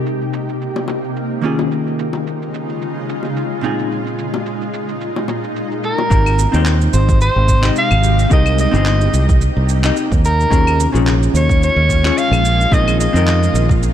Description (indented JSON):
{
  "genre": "sunset chillout",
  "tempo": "109 BPM",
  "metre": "4/4",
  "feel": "swing 56% on 16ths",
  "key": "Ab major",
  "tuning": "A4 = 438 Hz",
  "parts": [
    { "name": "vintage hollow-body jazz guitar", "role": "accompaniment", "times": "0.0-13.9 s", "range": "Bb2 to Eb5", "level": "-22 LUFS", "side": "moving between left 6 dB and right 1 dB", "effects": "auto-pan, digital delay" },
    { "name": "shimmering ambient pad", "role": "sustained chords", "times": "0.0-13.9 s", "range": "Bb2 to G4", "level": "-22 LUFS", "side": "equal", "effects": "chorus, built-in reverb" },
    { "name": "electronic shaker, claves and handclaps", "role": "drums", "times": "0.1-13.9 s", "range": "none", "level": "-26 LUFS", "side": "right 1 dB", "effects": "overdrive, low-pass filter on perc, low-pass filter on snare" },
    { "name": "bongos", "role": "percussion", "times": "0.8-6.1 s", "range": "none", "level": "-26 LUFS", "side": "left 5 dB", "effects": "none" },
    { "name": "warm soprano saxophone", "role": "melody", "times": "5.8-13.8 s", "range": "Bb4 to F5", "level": "-18 LUFS", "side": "equal", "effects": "digital delay" },
    { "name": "fingered electric bass", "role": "bass", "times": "6.1-13.9 s", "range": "G1 to F2", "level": "-14 LUFS", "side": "equal", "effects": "none" },
    { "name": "electronic kick drum", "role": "drums", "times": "6.1-13.8 s", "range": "none", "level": "-15 LUFS", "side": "equal", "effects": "none" }
  ],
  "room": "light reverb, digital ambience",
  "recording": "dark, warm production",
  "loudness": "-13 LUFS",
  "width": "side -10 dB against mid",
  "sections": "0.0-6.1 A section; 6.1-13.9 B section",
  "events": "filter sweep on ambient pad 0.0-6.1",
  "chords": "0.0 Cm7; 1.4 Eb9sus4; 3.6 Bb7sus4; 6.1 Abmaj7; 8.3 Cm7; 10.2 Eb9sus4; 12.4 Bb7sus4"
}